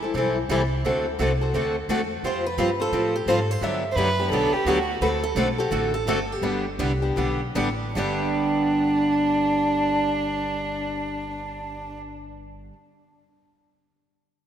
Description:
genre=acoustic string swing (jazz manouche)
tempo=147-173 BPM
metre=4/4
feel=swing 60% on 8ths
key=G major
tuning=A4 = 440 Hz
part: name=picked steel-string acoustic guitar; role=accompaniment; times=0.0-12.7 s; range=G2 to C5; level=-27 LUFS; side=left 4 dB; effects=none
part: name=upright bass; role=bass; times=0.0-12.7 s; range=G1 to A2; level=-30 LUFS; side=equal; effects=none
part: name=picked steel-string acoustic guitar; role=accompaniment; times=0.1-12.7 s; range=G2 to C5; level=-27 LUFS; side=right 4 dB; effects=none
part: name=picked steel-string acoustic guitar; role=melody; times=2.3-7.6 s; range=F#4 to E5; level=-29 LUFS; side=right 2 dB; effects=none
part: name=warm violin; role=second line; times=3.9-4.9, 8.0-12.0 s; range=D4 to C5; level=-25 LUFS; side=right 2 dB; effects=none
room=wet lush hall reverb, RT60 2.7 s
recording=rough home demo mix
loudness=-21 LUFS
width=side -9 dB against mid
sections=0.0-8.0 A section; 8.0-11.2 B section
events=slowing down 5.0-8.0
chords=0.0 Am7; 0.8 D7; 2.2 Fsus2; 3.6 Gmaj7; 5.0 D7; 6.4 G

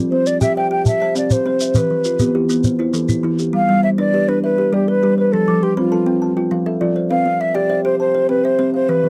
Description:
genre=southern african traditional, mbira-style interlocking cycle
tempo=134 BPM (dotted quarters)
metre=12/8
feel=straight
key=unclear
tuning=A4 = 440 Hz
part: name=kalimba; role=arpeggios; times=0.0-9.1 s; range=E3 to G5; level=-21 LUFS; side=equal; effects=none
part: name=kalimba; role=arpeggios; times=0.0-9.1 s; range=E3 to D6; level=-26 LUFS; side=equal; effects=none
part: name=mellow hollow concert flute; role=melody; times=0.1-9.1 s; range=F4 to G5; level=-20 LUFS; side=equal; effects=none
part: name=shekere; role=percussion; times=0.3-3.5 s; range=none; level=-21 LUFS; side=equal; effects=none
room=light reverb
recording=dry, close 1970s-style studio recording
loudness=-17 LUFS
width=mono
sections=0.0-3.5 A section; 3.5-9.1 B section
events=kalimba fill 5.3-7.1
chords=0.0 C; 1.8 Em; 3.5 G; 5.3 F; 7.1 C

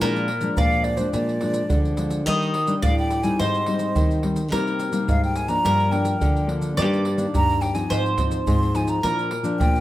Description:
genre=samba and choro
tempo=106 BPM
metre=4/4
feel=straight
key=Eb major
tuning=A4 = 440 Hz
part: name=bowl-back mandolin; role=second line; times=0.0-9.8 s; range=Bb4 to Eb5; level=-28 LUFS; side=right 1 dB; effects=none
part: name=nylon-string guitar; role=accompaniment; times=0.0-9.8 s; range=F2 to Eb4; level=-26 LUFS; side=left 2 dB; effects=none
part: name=nylon-string guitar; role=bass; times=0.0-9.8 s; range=G2 to Eb3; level=-25 LUFS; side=equal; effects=none
part: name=maracas, surdo and pandeiro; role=percussion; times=0.0-9.8 s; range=none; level=-25 LUFS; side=right 1 dB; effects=none
part: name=breathy hollow concert flute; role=melody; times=0.6-9.8 s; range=C5 to C6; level=-25 LUFS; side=equal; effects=none
room=moderate large studio reverb, RT60 0.9 s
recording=none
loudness=-19 LUFS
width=side -15 dB against mid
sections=0.0-9.8 A section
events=none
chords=0.0 Bb7; 2.3 Ebmaj7; 3.4 Abmaj7; 4.5 Cm7; 5.6 Gm7; 6.8 Ebmaj7/G; 7.9 Fm7/Ab; 9.0 Bb

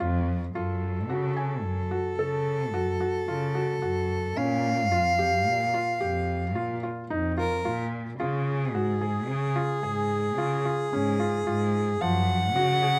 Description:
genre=contemporary instrumental, chamber music in an uneven meter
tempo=110 BPM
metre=7/4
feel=straight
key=F# harmonic minor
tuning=A4 = 441 Hz
part: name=felt-muted upright piano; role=arpeggios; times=0.0-13.0 s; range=E#3 to G#5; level=-33 LUFS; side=equal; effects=none
part: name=warm cello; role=bass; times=0.0-13.0 s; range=F2 to C#3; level=-31 LUFS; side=equal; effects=none
part: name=clear soprano saxophone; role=melody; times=0.6-13.0 s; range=G#4 to F#5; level=-31 LUFS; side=equal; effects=none
room=light reverb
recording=close, detailed microphones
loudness=-27 LUFS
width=mono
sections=0.6-13.0 A section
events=none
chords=0.0 N.C.; 0.6 F#m; 4.4 A#5; 8.2 C#; 12.0 F#5

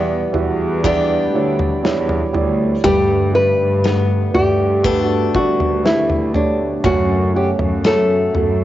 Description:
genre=pop ballad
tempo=60 BPM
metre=4/4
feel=straight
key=unclear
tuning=A4 = 440 Hz
part: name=felt-muted upright piano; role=accompaniment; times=0.0-8.6 s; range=G2 to F#5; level=-20 LUFS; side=right 5 dB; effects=cassette tape
part: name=picked steel-string acoustic guitar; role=arpeggios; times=0.0-8.6 s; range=F#2 to A4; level=-24 LUFS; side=left 7 dB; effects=cassette tape
part: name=warm studio cello section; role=bass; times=0.0-8.6 s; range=D2 to G2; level=-21 LUFS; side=left 1 dB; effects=none
part: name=natural country drum kit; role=drums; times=0.3-8.6 s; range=kick drum, snare drum, toms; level=-22 LUFS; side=left 1 dB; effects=cassette tape
part: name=nylon-string guitar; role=melody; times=2.8-8.6 s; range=D4 to B4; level=-17 LUFS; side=left 1 dB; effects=none
room=light reverb, small room ambience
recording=home recording on cassette, nothing above 7.7 kHz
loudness=-14 LUFS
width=side -13 dB against mid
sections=0.0-8.6 A section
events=none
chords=0.0 Em7; 2.8 Gadd9; 6.8 F#m

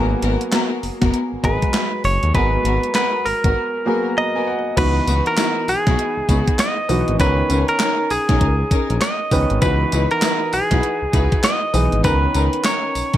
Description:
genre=R&B, new jack swing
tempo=99 BPM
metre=4/4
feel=swing 61% on 16ths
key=C# dorian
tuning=A4 = 440 Hz
part: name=warm baby grand piano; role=accompaniment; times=0.0-13.2 s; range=D#3 to A#5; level=-25 LUFS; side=right 1 dB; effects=none
part: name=warm studio string section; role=stabs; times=0.0-13.2 s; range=B3 to B4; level=-24 LUFS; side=left 3 dB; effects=none
part: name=smooth synth bass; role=bass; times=0.0-13.2 s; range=F#1 to D#2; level=-20 LUFS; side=equal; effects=none
part: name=gated 80s digital drum machine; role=drums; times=0.2-13.2 s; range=crash cymbal, handclaps, hi-hat, kick drum, snare drum, tambourine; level=-21 LUFS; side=equal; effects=gated reverb, gated reverb snare
part: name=direct-recorded clean electric guitar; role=melody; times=1.4-13.2 s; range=G#4 to D#5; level=-20 LUFS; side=right 1 dB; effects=none
room=light reverb, digital ambience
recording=none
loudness=-16 LUFS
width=side -12 dB against mid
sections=0.0-4.8 A section; 4.8-13.2 B section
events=break 3.6-4.8; grand piano fill 3.9-4.8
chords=0.0 G#m9; 4.8 C#m11; 7.2 Bmaj9; 9.6 C#m11; 12.0 Bmaj9

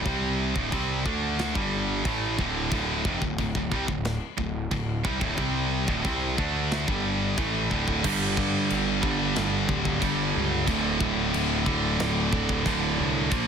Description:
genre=heavy metal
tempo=91 BPM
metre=4/4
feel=straight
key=unclear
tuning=A4 = 440 Hz
part: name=high-gain distorted guitar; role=riff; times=0.0-13.5 s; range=D2 to D4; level=-28 LUFS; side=right 13 dB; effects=distortion
part: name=scooped high-gain guitar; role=riff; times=0.0-13.5 s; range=D2 to D4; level=-29 LUFS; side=left 10 dB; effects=distortion
part: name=fuzz picked electric bass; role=bass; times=0.0-13.5 s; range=D1 to G2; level=-31 LUFS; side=equal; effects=overdrive
part: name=tight metal drum kit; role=drums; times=0.1-13.5 s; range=china cymbal, crash cymbal, kick drum, snare drum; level=-32 LUFS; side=equal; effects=soft clipping on kick
part: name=sludgy distorted guitar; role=riff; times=8.0-13.5 s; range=D2 to Bb3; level=-31 LUFS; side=right 1 dB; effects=overdrive
room=little or no reverb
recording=dense, heavily limited modern master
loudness=-24 LUFS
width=side -7 dB against mid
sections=0.0-8.0 A section; 8.0-13.5 B section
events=drum fill 7.7-8.0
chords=0.0 D5; 8.0 G5; 10.7 D5

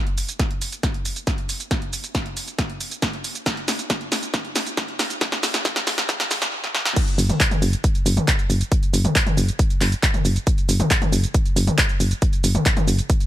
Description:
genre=uplifting trance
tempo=137 BPM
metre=4/4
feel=straight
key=unclear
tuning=A4 = 440 Hz
part: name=punchy analog drum machine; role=drums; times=0.1-13.3 s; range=crash cymbal, handclaps, hi-hat, shaker, snare drum, toms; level=-22 LUFS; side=equal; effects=none
part: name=electronic kick drum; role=drums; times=0.4-13.2 s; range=none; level=-21 LUFS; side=equal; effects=none
part: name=solid FM bass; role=bass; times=7.2-13.0 s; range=F#1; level=-20 LUFS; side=equal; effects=sidechain pumping
room=little or no reverb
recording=high-pass filter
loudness=-19 LUFS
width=side -14 dB against mid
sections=0.0-7.0 A section; 7.0-13.3 B section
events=build-up 0.0-7.0; drum fill 0.0-6.5, 6.6-7.0; filter sweep 0.0-7.0; drop 7.0-13.3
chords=none

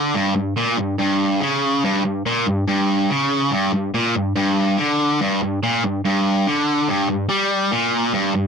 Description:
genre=rock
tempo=143 BPM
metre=4/4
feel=straight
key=unclear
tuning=A4 = 439 Hz
part: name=sludgy distorted guitar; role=solo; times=0.0-8.5 s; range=G2 to G3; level=-17 LUFS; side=equal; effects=overdrive
room=moderate booth ambience, RT60 0.2 s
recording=dry, close 1970s-style studio recording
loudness=-17 LUFS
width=side -6 dB against mid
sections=0.0-6.9 A section; 6.9-8.5 B section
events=none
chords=none

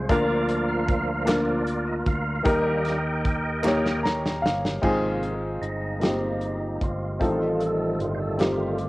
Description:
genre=slow gospel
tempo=51 BPM (dotted quarters)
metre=6/8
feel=straight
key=Ab major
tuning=A4 = 440 Hz
part: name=warm upright piano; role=accompaniment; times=0.0-8.9 s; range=A2 to Bb5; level=-25 LUFS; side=left 1 dB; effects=none
part: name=percussive tonewheel organ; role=sustained chords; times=0.0-8.9 s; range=C3 to G5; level=-29 LUFS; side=right 2 dB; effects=fast rotary speaker, overdrive, chorus vibrato
part: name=fingered electric bass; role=bass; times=0.0-8.9 s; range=G1 to Eb2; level=-31 LUFS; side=equal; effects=none
part: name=warm soul drum kit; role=drums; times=0.1-8.9 s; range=crash cymbal, hi-hat, kick drum, snare drum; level=-27 LUFS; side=equal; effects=cassette tape
part: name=group handclap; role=percussion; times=1.3-4.0 s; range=none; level=-39 LUFS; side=right 2 dB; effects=none
part: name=warm French horn section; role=sustained chords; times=4.8-8.9 s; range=Ab3 to Eb5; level=-36 LUFS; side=right 1 dB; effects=none
room=light reverb, studio ambience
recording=home recording on cassette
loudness=-22 LUFS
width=side -19 dB against mid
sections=0.0-4.8 A section; 4.8-8.9 B section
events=tonewheel organ solo 0.0-4.8, 4.8-8.9; drum fill 3.6-4.8; upright piano fill 3.6-4.8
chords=0.1 Bb/D; 2.5 Eb; 4.8 Ab6; 7.2 F7

